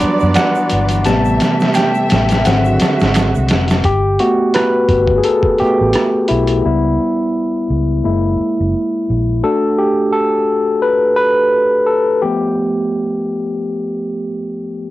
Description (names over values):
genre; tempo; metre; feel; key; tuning
R&B, neo-soul; 86 BPM; 4/4; swing 57% on 16ths; G major; A4 = 440 Hz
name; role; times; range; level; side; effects
barky tine electric piano; accompaniment; 0.0-14.9 s; C3 to D6; -14 LUFS; left 1 dB; overdrive, auto-pan, cassette tape
warm symphonic string section; sustained chords; 0.0-3.8 s; D3 to E5; -19 LUFS; right 2 dB; cassette tape
vintage muted fingered electric bass; bass; 0.0-9.4 s; F1 to F#2; -17 LUFS; right 1 dB; none
dusty soul sampler-style drum kit; drums; 0.0-6.6 s; finger snaps, hi-hat, kick drum, rim click, snare drum; -18 LUFS; equal; overdrive, cassette tape
tube shaker and finger snaps; percussion; 0.0-3.8 s; none; -32 LUFS; right 7 dB; none
room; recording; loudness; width
light reverb; home recording on cassette; -12 LUFS; side -16 dB against mid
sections
0.0-3.8 A section; 3.8-14.9 B section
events
tine electric piano solo 0.0-3.8, 3.8-14.9; drum fill 1.1-3.8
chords
0.0 Em9; 1.1 Am7; 2.4 Ab7#11; 3.8 Gmaj7; 6.6 C#m7b5; 8.0 F#7; 9.4 Bm7; 12.2 G7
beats
0.35 | 1.05 1.75 2.44 3.14 | 3.84 4.54 5.24 5.93 | 6.63 7.33 8.03 8.72 | 9.42 10.12 10.82 11.52 | 12.21 12.91 13.61 14.31